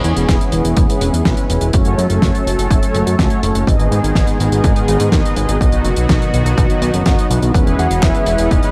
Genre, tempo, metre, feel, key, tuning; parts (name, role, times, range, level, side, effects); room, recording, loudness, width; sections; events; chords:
italo disco; 124 BPM; 4/4; straight; E major; A4 = 436 Hz
warm analog pad; sustained chords; 0.0-8.7 s; D#3 to A4; -23 LUFS; equal; chorus
mellow synth brass; stabs; 0.0-8.7 s; G#2 to F#5; -23 LUFS; equal; chorus, tape echo
fat analog bass; bass; 0.0-8.6 s; E1 to G#2; -20 LUFS; equal
damped 70s drum kit; drums; 0.0-8.7 s; handclaps, hi-hat, snare drum; -24 LUFS; equal; studio reverb
electronic kick drum; drums; 0.3-8.6 s; -18 LUFS; equal; studio reverb
soft octave-layered synth lead; melody; 7.8-8.7 s; D#5 to F#5; -20 LUFS; equal; chorus, phaser, tape echo
small room ambience; -15 LUFS; mono
0.0-8.7 A section
0.0 E6; 1.7 F#m; 3.7 G#m; 5.6 B; 7.5 E6